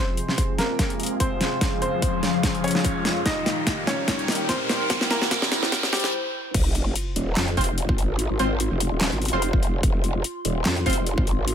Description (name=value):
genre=heavy wobble dubstep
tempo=146 BPM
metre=4/4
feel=swing 54% on 16ths, half-time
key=F minor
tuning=A4 = 440 Hz
part: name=clear grand piano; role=melody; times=0.0-6.1 s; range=G3 to Eb5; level=-30 LUFS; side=equal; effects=low-pass filter, tape echo
part: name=supersaw chords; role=sustained chords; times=0.0-6.1 s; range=F2 to Ab4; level=-32 LUFS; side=right 1 dB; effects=sidechain pumping, low-pass filter
part: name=riser and sub drop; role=sound effects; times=1.2-8.2 s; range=none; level=-29 LUFS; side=right 1 dB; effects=none
part: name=warbly tape-like pad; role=texture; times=0.5-11.5 s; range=F3 to C6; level=-30 LUFS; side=left 2 dB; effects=chorus, built-in reverb, sidechain pumping
part: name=dubstep drum kit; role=drums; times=0.2-11.5 s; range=crash cymbal, handclaps, hi-hat, snare drum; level=-26 LUFS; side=equal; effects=overdrive, small room ambience
part: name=electronic kick drum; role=drums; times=0.4-11.3 s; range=none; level=-25 LUFS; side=equal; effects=overdrive, small room ambience
part: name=growl bass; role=bass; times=6.5-11.5 s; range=Eb1 to F2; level=-25 LUFS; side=equal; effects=chorus, overdrive
part: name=orchestra-hit-like synth stab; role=stabs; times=7.6-10.9 s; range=C4 to C5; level=-28 LUFS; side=right 1 dB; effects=built-in reverb, tape echo
room=little or no reverb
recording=high-pass filter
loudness=-21 LUFS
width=side -8 dB against mid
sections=0.0-6.5 A section; 6.5-11.5 B section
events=build-up 0.0-6.5; drum fill 0.0-6.1; filter sweep on supersaw synth 0.0-6.5; filter sweep 0.0-6.5; riser 1.2-6.1; stop 6.1-6.5; drop 6.5-11.5; impact 6.5-8.2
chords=0.0 Fm; 1.6 Db/F; 3.3 Eb; 4.9 C; 6.5 F5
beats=0.38 0.79 1.20 | 1.61 2.02 2.44 2.85 | 3.26 3.67 4.08 4.49 | 4.90 5.31 5.72 6.13 | 6.54 6.96 7.37 7.78 | 8.19 8.60 9.01 9.42 | 9.83 10.24 10.65 11.06 | 11.48